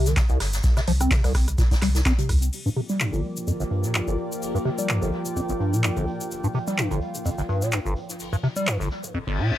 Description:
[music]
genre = acid house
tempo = 127 BPM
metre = 4/4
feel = swing 55% on 16ths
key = G minor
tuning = A4 = 438 Hz
[part]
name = liquid acid bass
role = riff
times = 0.0-9.5 s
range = G1 to C4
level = -25 LUFS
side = equal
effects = phaser, overdrive, sidechain pumping, tape echo
[part]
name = warm sub bass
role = bass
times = 0.0-2.5 s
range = G1 to C2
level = -23 LUFS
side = equal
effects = tube saturation, sidechain pumping
[part]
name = electro analog drum machine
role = drums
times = 0.1-8.8 s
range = crash cymbal, handclaps, hi-hat, rim click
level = -28 LUFS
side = equal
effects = none
[part]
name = soft-mallet drum kit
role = drums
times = 0.1-9.0 s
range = hi-hat, shaker, snare drum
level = -39 LUFS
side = left 1 dB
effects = high-pass filter on hats, low-pass filter on hats, high-pass filter on snare, low-pass filter on snare, high-pass filter on perc, low-pass filter on perc, high-pass filter on room, low-pass filter on room
[part]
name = egg shaker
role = percussion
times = 0.1-9.1 s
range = none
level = -36 LUFS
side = left 3 dB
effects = none
[part]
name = electronic kick drum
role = drums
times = 0.2-2.2 s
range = none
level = -21 LUFS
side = equal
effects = none
[part]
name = lush unison pad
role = sustained chords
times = 2.5-9.1 s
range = F3 to D5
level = -32 LUFS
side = equal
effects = chorus, sidechain pumping
[part]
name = warbly tape-like pad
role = texture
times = 3.1-9.1 s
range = F4 to G5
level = -36 LUFS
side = equal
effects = chorus, built-in reverb, sidechain pumping
[part]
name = reverse cymbal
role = sound effects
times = 9.3-9.6 s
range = none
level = -30 LUFS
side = left 7 dB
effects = none
[sound]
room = little or no reverb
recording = none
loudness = -22 LUFS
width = side -13 dB against mid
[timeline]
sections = 0.0-2.5 A section; 2.5-9.6 B section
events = band accent 2.1; reverse cymbal 9.3-9.6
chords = 0.0 N.C.; 2.5 Gm7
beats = 0.17 | 0.64 1.11 1.58 2.06 | 2.53 3.00 3.47 3.95 | 4.42 4.89 5.36 5.84 | 6.31 6.78 7.25 7.73 | 8.20 8.67 9.14

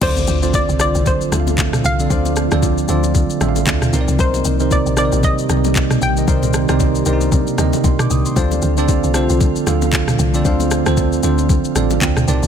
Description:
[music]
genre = amapiano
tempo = 115 BPM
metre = 4/4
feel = swing 58% on 16ths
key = D phrygian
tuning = A4 = 440 Hz
[part]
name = hollow square pluck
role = melody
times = 0.0-6.8 s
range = C5 to G5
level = -22 LUFS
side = equal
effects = chorus, ping-pong delay
[part]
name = bell-like tine electric piano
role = accompaniment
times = 0.0-12.5 s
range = C3 to Eb6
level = -19 LUFS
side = moving between right 2 dB and right 9 dB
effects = auto-pan
[part]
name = glassy FM pad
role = sustained chords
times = 0.9-12.5 s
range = D3 to G4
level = -23 LUFS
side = equal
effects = ensemble chorus, built-in reverb
[part]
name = percussive organ stab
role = stabs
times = 0.0-11.5 s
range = D4 to D5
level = -26 LUFS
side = left 8 dB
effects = chorus, ping-pong delay
[part]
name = woody log drum bass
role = bass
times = 0.0-12.5 s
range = A1 to C3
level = -19 LUFS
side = left 1 dB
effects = none
[part]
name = smooth R&B drum kit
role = drums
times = 0.0-12.5 s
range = crash cymbal, handclaps, kick drum, rim click, shaker, toms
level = -19 LUFS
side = left 1 dB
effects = none
[part]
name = congas and bongos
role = percussion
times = 0.0-12.2 s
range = none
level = -27 LUFS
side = left 10 dB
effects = none
[part]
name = impact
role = sound effects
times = 0.0-2.1 s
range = none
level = -28 LUFS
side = left 1 dB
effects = none
[sound]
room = little or no reverb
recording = none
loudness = -14 LUFS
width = side -8 dB against mid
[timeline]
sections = 0.0-12.5 A section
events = impact 0.0-2.1; tine electric piano fill 11.5-12.5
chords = 0.0 Dm7; 3.9 Cm7; 8.4 Dm7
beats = | 0.01 0.54 1.06 1.58 | 2.10 2.62 3.15 3.67 | 4.19 4.71 5.23 5.75 | 6.28 6.80 7.32 7.84 | 8.36 8.88 9.41 9.93 | 10.45 10.97 11.49 12.02

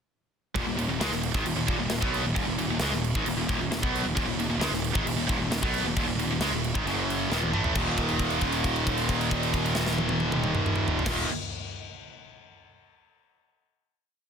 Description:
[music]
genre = heavy metal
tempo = 134 BPM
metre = 4/4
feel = straight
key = Eb minor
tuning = A4 = 444 Hz
[part]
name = high-gain distorted guitar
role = riff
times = 0.6-11.3 s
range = Eb2 to Cb4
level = -27 LUFS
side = right 1 dB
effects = distortion
[part]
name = fuzz picked electric bass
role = bass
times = 0.6-11.2 s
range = Eb1 to Db2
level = -32 LUFS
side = left 1 dB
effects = overdrive
[part]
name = tight metal drum kit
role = drums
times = 0.6-11.2 s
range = crash cymbal, kick drum, snare drum, toms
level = -30 LUFS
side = equal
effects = none
[sound]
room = small room ambience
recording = dense, heavily limited modern master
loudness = -24 LUFS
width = side -7 dB against mid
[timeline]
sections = 0.6-7.8 riff; 7.8-11.3 final chord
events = drum fill 7.3-7.8; held note 7.8-11.1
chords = 0.6 Eb5; 6.9 Gb5; 7.3 Eb5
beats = | 0.55 1.00 1.46 1.91 | 2.36 2.81 3.27 3.72 | 4.17 4.62 5.07 5.52 | 5.96 6.41 6.86 7.31 | 7.75 8.20 8.64 9.09 | 9.54 9.98 10.43 10.88

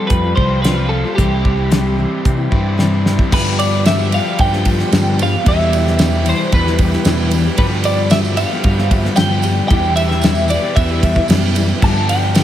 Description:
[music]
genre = folk rock and heartland rock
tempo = 113 BPM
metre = 4/4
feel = straight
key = G mixolydian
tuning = A4 = 440 Hz
[part]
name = twelve-string electric guitar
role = melody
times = 0.0-12.4 s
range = G4 to A5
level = -20 LUFS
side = equal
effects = wide subtle chorus, slapback echo, tape echo
[part]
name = picked steel-string acoustic guitar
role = accompaniment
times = 0.0-12.4 s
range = E2 to G4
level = -21 LUFS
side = left 4 dB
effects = slapback echo
[part]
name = tonewheel organ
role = sustained chords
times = 0.0-12.4 s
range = E3 to C6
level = -30 LUFS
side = right 1 dB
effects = none
[part]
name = crunchy overdriven guitar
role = riff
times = 0.0-12.4 s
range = E2 to G4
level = -23 LUFS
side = right 1 dB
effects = slapback echo
[part]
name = picked electric bass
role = bass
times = 0.1-12.4 s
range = C2 to C3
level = -18 LUFS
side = equal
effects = none
[part]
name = damped 70s drum kit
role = drums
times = 0.1-12.4 s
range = crash cymbal, hi-hat, kick drum, ride cymbal, snare drum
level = -17 LUFS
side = equal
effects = none
[part]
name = tambourine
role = percussion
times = 3.3-12.4 s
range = none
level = -34 LUFS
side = right 7 dB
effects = none
[sound]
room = moderate lush hall reverb, RT60 2.4 s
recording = big arena sound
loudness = -12 LUFS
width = side -11 dB against mid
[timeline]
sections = 0.0-3.3 A section; 3.3-12.4 B section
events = drum fill 2.8-3.3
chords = 0.0 Fsus2; 1.2 C; 3.3 G7; 5.5 Em; 7.6 G7; 9.7 Em; 11.8 G7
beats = 0.10 0.64 | 1.17 1.71 2.25 2.78 | 3.32 3.85 4.39 4.92 | 5.45 5.98 6.52 7.05 | 7.58 8.11 8.64 9.17 | 9.70 10.23 10.76 11.29 | 11.82 12.35

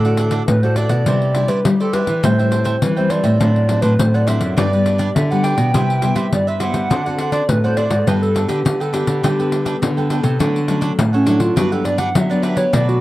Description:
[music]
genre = samba and choro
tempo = 103 BPM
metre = 4/4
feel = straight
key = G major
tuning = A4 = 438 Hz
[part]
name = reedy FM lead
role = melody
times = 0.0-13.0 s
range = C#4 to G5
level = -20 LUFS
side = right 1 dB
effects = chorus
[part]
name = cavaquinho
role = accompaniment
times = 0.0-13.0 s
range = D4 to G5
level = -27 LUFS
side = right 5 dB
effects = none
[part]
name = nylon-string guitar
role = accompaniment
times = 0.0-13.0 s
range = G2 to A4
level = -22 LUFS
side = left 3 dB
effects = none
[part]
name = nylon-string guitar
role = bass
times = 0.0-13.0 s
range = F#2 to G3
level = -18 LUFS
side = equal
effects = none
[part]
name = pandeiro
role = percussion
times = 0.0-13.0 s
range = none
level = -22 LUFS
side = left 2 dB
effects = none
[sound]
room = light reverb, small room ambience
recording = dark, warm production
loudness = -14 LUFS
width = side -16 dB against mid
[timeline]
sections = 0.0-10.4 A section; 10.4-13.0 B section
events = soft synth lead solo 10.4-13.0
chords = 0.0 D; 1.1 Cadd9; 2.2 Am7; 3.4 D7/A; 4.6 G; 5.7 Cmaj7; 6.9 D7; 8.1 Gadd9; 10.4 Dmaj7; 11.6 Gmaj7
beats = 0.48 | 1.07 1.66 2.24 2.83 | 3.41 3.99 4.58 5.16 | 5.74 6.33 6.91 7.49 | 8.08 8.66 9.24 9.82 | 10.41 10.99 11.57 12.15 | 12.73

